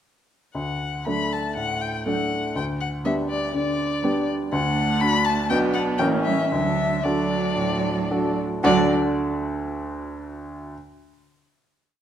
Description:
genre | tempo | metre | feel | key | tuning
quick classical-period movement for piano quartet | 111-125 BPM | 4/4 | rubato | D major | A4 = 438 Hz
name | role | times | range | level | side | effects
clear baby grand piano | accompaniment | 0.5-10.8 s | A1 to F#5 | -24 LUFS | equal | none
rich violin | melody | 0.6-8.9 s | D5 to B5 | -26 LUFS | left 5 dB | none
rich cello | second line | 1.1-8.9 s | F#3 to B3 | -27 LUFS | right 6 dB | none
warm viola | accompaniment | 1.1-8.9 s | A3 to D4 | -30 LUFS | right 4 dB | none
room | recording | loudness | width
moderate recital hall reverb, RT60 1.3 s | none | -21 LUFS | side -9 dB against mid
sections
0.6-8.6 A section; 8.6-10.7 final chord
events
none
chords
0.6 D; 2.6 G/D; 4.5 D; 5.5 Bm; 6.0 A(b9); 6.5 D

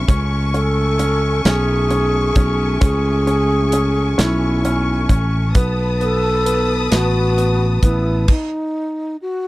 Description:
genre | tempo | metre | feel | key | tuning
six-eight pop ballad | 44 BPM (dotted quarters) | 6/8 | straight | unclear | A4 = 440 Hz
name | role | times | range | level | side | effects
bright concert grand piano | accompaniment | 0.0-8.3 s | B3 to C#4 | -23 LUFS | equal | none
warm symphonic string section | sustained chords | 0.0-8.3 s | A3 to D#6 | -25 LUFS | left 3 dB | none
sustaining fretless electric bass | bass | 0.0-8.3 s | A1 to C#2 | -18 LUFS | equal | none
modern studio drum kit | drums | 0.1-8.5 s | crash cymbal, hi-hat, kick drum, snare drum | -16 LUFS | equal | none
breathy mellow wooden-headed alto flute | melody | 0.6-9.5 s | D#4 to A4 | -21 LUFS | equal | none
room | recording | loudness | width
little or no reverb | dry, close 1970s-style studio recording | -15 LUFS | side -18 dB against mid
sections
0.0-9.5 A section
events
stop 8.3-9.5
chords
0.1 Amaj7; 5.6 B7

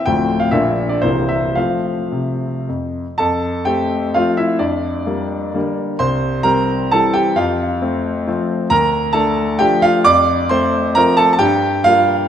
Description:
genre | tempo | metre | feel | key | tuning
classical, romantic triple-time dance for piano with dotted rhythms | 101-143 BPM | 3/4 | rubato | F major, D minor from 8.7 s | A4 = 442 Hz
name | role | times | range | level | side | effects
clear concert grand piano | solo | 0.0-12.3 s | C1 to D6 | -14 LUFS | equal | none
room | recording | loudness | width
moderate concert hall reverb, RT60 2.1 s | nothing above 11.0 kHz | -14 LUFS | side -9 dB against mid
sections
0.0-3.2 A section; 3.2-12.3 B section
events
none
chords
0.1 Dm7; 0.5 Bb; 1.0 C7; 1.6 F; 4.6 Gm/F; 6.0 C; 7.4 F; 8.7 Dm; 10.0 F; 11.4 Gm7

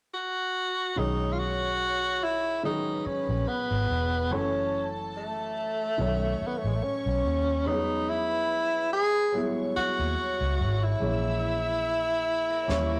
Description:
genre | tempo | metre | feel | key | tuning
lush 1970s-style soul | 72 BPM | 4/4 | swing 54% on 16ths | B major | A4 = 440 Hz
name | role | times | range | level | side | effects
breathy tenor saxophone | melody | 0.1-13.0 s | G#3 to G#4 | -30 LUFS | equal | none
warm studio violin section | second line | 1.0-13.0 s | A4 to E6 | -40 LUFS | equal | none
warm grand piano | accompaniment | 1.0-13.0 s | D#3 to E4 | -36 LUFS | equal | none
vintage muted fingered electric bass | bass | 1.0-13.0 s | E1 to E2 | -33 LUFS | equal | none
electric guitar through a small old amp | riff | 12.5-13.0 s | E4 to E5 | -42 LUFS | equal | none
snare drum | drums | 12.7-12.9 s | none | -37 LUFS | equal | none
room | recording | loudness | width
moderate stone room reverb, RT60 1.2 s | rough rehearsal-room recording, warm saturation | -28 LUFS | mono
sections
1.0-13.0 A section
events
drum fill 12.7-13.0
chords
0.0 N.C.; 1.0 B6; 4.3 F#m7; 6.0 B7; 7.7 E69; 11.0 A#m7b5

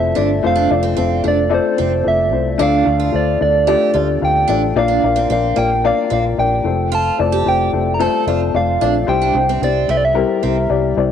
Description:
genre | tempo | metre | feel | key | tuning
piano-driven pop | 111 BPM | 4/4 | straight | unclear | A4 = 437 Hz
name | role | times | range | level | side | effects
soft struck synth lead | melody | 0.0-11.0 s | C5 to Bb5 | -18 LUFS | right 2 dB | chorus, cassette tape
dark upright piano | accompaniment | 0.0-11.1 s | Bb2 to F5 | -18 LUFS | left 8 dB | cassette tape
vintage muted fingered electric bass | bass | 0.0-11.1 s | F1 to D2 | -21 LUFS | right 2 dB | none
picked steel-string acoustic guitar | riff | 0.2-10.6 s | A3 to A4 | -24 LUFS | right 13 dB | cassette tape
room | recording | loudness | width
moderate lush hall reverb, RT60 2.5 s | home recording on cassette | -13 LUFS | side -8 dB against mid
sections
0.0-11.1 A section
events
none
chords
0.0 F; 2.6 Dm; 4.8 Bb; 6.7 F; 9.1 C

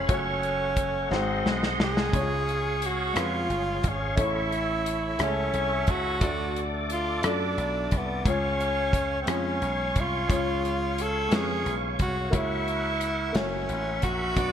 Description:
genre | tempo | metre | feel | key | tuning
slow gospel | 59 BPM (dotted quarters) | 6/8 | straight | F# harmonic minor | A4 = 437 Hz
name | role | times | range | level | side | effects
breathy tenor saxophone | melody | 0.0-14.5 s | B3 to A4 | -29 LUFS | equal | digital delay
warm upright piano | accompaniment | 0.0-14.5 s | G#2 to D5 | -33 LUFS | left 2 dB | lush chorus
bright tonewheel organ | sustained chords | 0.0-14.5 s | G#4 to D6 | -32 LUFS | right 1 dB | slow rotary speaker, chorus vibrato
dry thumbed slap bass | bass | 0.0-14.5 s | F#1 to F#2 | -32 LUFS | equal | none
modern studio drum kit | drums | 0.1-14.5 s | hi-hat, kick drum, rim click, snare drum | -29 LUFS | equal | gated reverb
room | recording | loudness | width
moderate lush hall reverb, RT60 2.6 s | bright 1980s-style digital production | -24 LUFS | side -9 dB against mid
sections
0.0-14.5 A section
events
drum fill 1.1-2.1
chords
0.1 F#m; 1.1 G#7; 2.1 C#; 4.2 A; 6.2 D; 8.3 C#; 12.3 F#7/C#; 13.3 F#7

